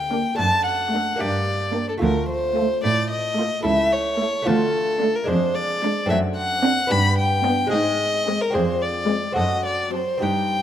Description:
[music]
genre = classical, baroque-style concerto movement with solo episodes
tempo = 74 BPM (dotted quarters)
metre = 6/8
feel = straight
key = unclear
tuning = A4 = 440 Hz
[part]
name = warm violin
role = melody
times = 0.0-10.6 s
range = A4 to B5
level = -22 LUFS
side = left 2 dB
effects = none
[part]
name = lute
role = accompaniment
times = 0.0-10.6 s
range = D2 to A4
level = -27 LUFS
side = right 1 dB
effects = none
[part]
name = warm chamber cello section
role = bass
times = 0.0-10.6 s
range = C#2 to A2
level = -25 LUFS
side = right 2 dB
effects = none
[part]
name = warm symphonic violin section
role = melody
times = 0.1-10.2 s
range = F4 to A4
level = -43 LUFS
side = left 5 dB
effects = none
[part]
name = warm studio violin section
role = second line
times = 0.1-10.2 s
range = C4 to F4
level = -35 LUFS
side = left 3 dB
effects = none
[part]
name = rich chamber viola section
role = accompaniment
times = 0.1-10.2 s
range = F#3 to C4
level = -27 LUFS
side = right 1 dB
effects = none
[sound]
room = moderate recital hall reverb, RT60 1.6 s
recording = none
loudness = -19 LUFS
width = side -10 dB against mid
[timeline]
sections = 0.0-10.6 A section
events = none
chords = 0.4 D/F#; 1.2 Gm; 2.0 Dm; 3.7 A/C#; 4.5 Dm; 5.3 Ddim/F; 6.1 D7/F#; 6.9 G; 7.7 Ab; 8.5 Dm7b5/F; 9.4 F#dim

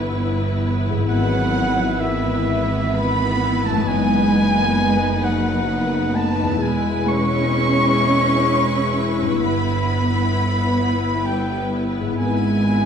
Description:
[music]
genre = cinematic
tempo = 65 BPM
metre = 3/4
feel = rubato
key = E major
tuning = A4 = 438 Hz
[part]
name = clear symphonic violin section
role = melody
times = 0.0-12.9 s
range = B4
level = -31 LUFS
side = equal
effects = none
[part]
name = rich symphonic viola section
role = accompaniment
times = 0.0-12.9 s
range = G#3 to E4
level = -26 LUFS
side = left 1 dB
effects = none
[part]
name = dark French horn section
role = sustained chords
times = 0.0-12.9 s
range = E3 to E4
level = -26 LUFS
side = left 4 dB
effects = none
[part]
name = concert harp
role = arpeggios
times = 0.0-12.9 s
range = E2 to B4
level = -28 LUFS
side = left 5 dB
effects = none
[part]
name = rich studio double bass section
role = bass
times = 0.0-12.9 s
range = E1 to G#1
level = -23 LUFS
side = right 2 dB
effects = none
[part]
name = bright oboe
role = second line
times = 1.1-12.9 s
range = E5 to C#6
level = -26 LUFS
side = equal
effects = none
[part]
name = mellow large flute ensemble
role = second line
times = 1.1-12.9 s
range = E5 to C#6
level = -28 LUFS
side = left 1 dB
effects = none
[part]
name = warm symphonic violin section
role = second line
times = 1.1-12.9 s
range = E5 to C#6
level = -30 LUFS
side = left 1 dB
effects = none
[part]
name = warm symphonic cello section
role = bass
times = 1.1-12.9 s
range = E3 to C#4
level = -23 LUFS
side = right 2 dB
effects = none
[sound]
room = wet stone room reverb, RT60 1.3 s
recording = dark, warm production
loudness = -17 LUFS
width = side -7 dB against mid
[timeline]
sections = 0.0-12.9 A section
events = none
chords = 0.0 G6; 1.1 E/G#; 3.9 B/F#; 6.6 E; 9.4 G6; 12.2 E/G#

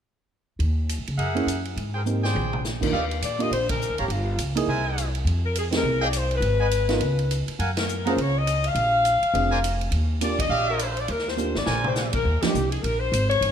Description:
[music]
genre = jazz, big band swing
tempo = 206 BPM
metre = 4/4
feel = swing 60% on 8ths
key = Eb major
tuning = A4 = 438 Hz
[part]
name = upright bass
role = bass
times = 0.6-13.5 s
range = F1 to Db3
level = -26 LUFS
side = equal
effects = none
[part]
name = swinging big-band drum kit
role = drums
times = 0.6-13.5 s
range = crash cymbal, hi-hat, kick drum, ride cymbal, snare drum, toms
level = -31 LUFS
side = right 1 dB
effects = none
[part]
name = clear trumpet section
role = stabs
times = 1.2-12.1 s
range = G4 to Bb5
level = -30 LUFS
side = right 2 dB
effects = none
[part]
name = warm concert grand piano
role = accompaniment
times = 1.3-12.5 s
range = Eb3 to Bb4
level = -28 LUFS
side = right 4 dB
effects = none
[part]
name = mellow saxophone section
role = melody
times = 3.2-13.5 s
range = F4 to F5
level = -25 LUFS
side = left 3 dB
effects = none
[sound]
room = light reverb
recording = none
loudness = -21 LUFS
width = side -8 dB against mid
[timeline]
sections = 0.6-2.9 A section; 2.9-12.3 B section; 12.3-13.5 B section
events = drum fill 2.1-2.6, 11.4-12.0; band accent 3.7, 5.7, 7.7, 10.4, 12.1, 12.4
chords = 0.6 Eb5; 1.2 Gb9; 1.8 Abmaj9; 2.3 Bb13; 2.9 Ebmaj9; 4.1 Gm7b5; 4.7 Caug7; 5.3 Fm9; 6.4 Abm7; 7.0 Bsus2/C#; 7.6 Gbmaj9; 8.8 Bb9; 9.9 Ebmaj9; 11.7 Bb9; 12.3 Eb

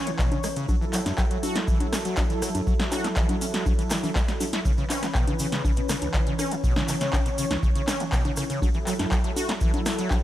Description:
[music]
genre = acid house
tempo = 121 BPM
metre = 4/4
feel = straight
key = unclear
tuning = A4 = 440 Hz
[part]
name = warm analog pad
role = sustained chords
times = 0.0-10.2 s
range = E3 to C#5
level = -30 LUFS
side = equal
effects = chorus, sidechain pumping
[part]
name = overdriven acid bass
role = riff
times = 0.0-10.2 s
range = C#2 to F#4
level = -30 LUFS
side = equal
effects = distortion, wide subtle chorus, sidechain pumping, tape echo
[part]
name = electro analog drum machine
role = drums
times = 0.1-10.2 s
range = congas, handclaps, hi-hat, rim click, snare drum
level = -29 LUFS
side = left 1 dB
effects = none
[part]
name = tube shaker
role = percussion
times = 0.1-10.2 s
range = none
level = -37 LUFS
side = right 2 dB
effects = none
[part]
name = electronic kick drum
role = drums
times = 0.2-10.2 s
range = none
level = -25 LUFS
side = equal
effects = none
[sound]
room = digital ambience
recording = dry, gritty hardware recording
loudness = -22 LUFS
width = side -13 dB against mid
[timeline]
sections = 0.0-10.2 A section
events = drum fill 4.2-4.7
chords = 0.0 C#m7; 0.7 F#m7; 4.7 C#m7; 8.6 F#m7

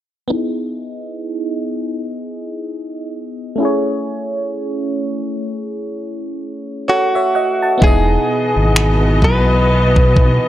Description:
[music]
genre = contemporary R&B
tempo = 64 BPM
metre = 4/4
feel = swing 58% on 16ths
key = E major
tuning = A4 = 444 Hz
[part]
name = FM electric piano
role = accompaniment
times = 0.3-10.5 s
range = A3 to A5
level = -20 LUFS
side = equal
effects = chorus, phaser, low-pass filter
[part]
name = direct-recorded clean electric guitar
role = melody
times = 6.9-10.5 s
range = F#4 to B4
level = -17 LUFS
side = equal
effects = spring reverb, analog delay
[part]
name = warm studio string section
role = sustained chords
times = 7.8-10.5 s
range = B2 to D#5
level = -20 LUFS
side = equal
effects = none
[part]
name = smooth gliding synth bass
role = bass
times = 7.8-10.4 s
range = E1 to B1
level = -14 LUFS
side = equal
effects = none
[part]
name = smooth R&B drum kit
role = drums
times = 7.8-10.4 s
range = finger snaps, kick drum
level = -13 LUFS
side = equal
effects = none
[sound]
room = little or no reverb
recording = dry, gritty hardware recording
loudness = -14 LUFS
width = side -13 dB against mid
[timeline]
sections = 0.3-7.8 A section; 7.8-10.5 B section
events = hi-hats muted 7.8-10.5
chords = 0.3 Emaj7; 3.6 Amaj7; 7.8 Emaj7

